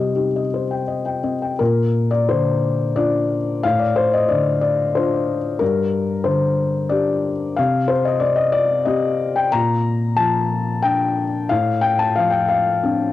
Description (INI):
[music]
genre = neoclassical minimalist piano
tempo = 91 BPM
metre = 3/4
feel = rubato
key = Bb major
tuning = A4 = 439 Hz
[part]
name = felt-muted upright piano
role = solo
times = 0.0-13.1 s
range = G2 to Bb5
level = -17 LUFS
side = left 3 dB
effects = cassette tape
[sound]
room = moderate booth ambience, RT60 0.2 s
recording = home recording on cassette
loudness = -17 LUFS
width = side -14 dB against mid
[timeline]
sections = 0.0-1.6 A section; 1.6-13.1 B section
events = none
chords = 0.0 Cm; 1.6 Bb; 3.6 Dm7/A; 5.6 Gm; 7.6 C5; 9.5 Bb; 11.5 Dm7/A